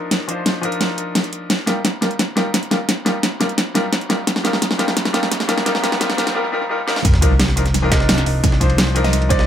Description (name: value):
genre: liquid drum and bass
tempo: 173 BPM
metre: 4/4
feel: straight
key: C minor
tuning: A4 = 441 Hz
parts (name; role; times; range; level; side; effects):
- clear baby grand piano; accompaniment; 0.0-9.5 s; F3 to D5; -22 LUFS; left 2 dB; analog delay
- pop drum kit; drums; 0.1-9.4 s; hi-hat, snare drum; -19 LUFS; equal; overdrive, analog delay
- riser and sub drop; sound effects; 3.9-8.4 s; none; -26 LUFS; equal; none
- smooth synth bass; bass; 7.0-9.5 s; C2; -18 LUFS; equal; none
- breakbeat sampler-style drum kit; drums; 7.0-9.5 s; ride cymbal, snare drum; -25 LUFS; right 1 dB; high-pass filter on cymbals, high-pass filter on snare
- electronic kick drum; drums; 7.0-9.4 s; none; -17 LUFS; equal; overdrive
- mallet-like synth pluck; melody; 7.9-9.5 s; C5 to Eb5; -25 LUFS; right 5 dB; chorus, phaser, vintage 12-bit sampler grit, analog delay
room: moderate spring reverb, RT60 1.1 s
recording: echo-heavy mix, high-pass filter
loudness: -16 LUFS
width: side -10 dB against mid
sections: 0.0-7.0 A section; 7.0-9.5 B section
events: build-up 0.0-7.0; drum fill 0.0-6.4, 6.9; drop 7.0-9.5; impact 7.0-8.4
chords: 0.0 Cm11; 1.5 F9sus4; 7.0 Cm11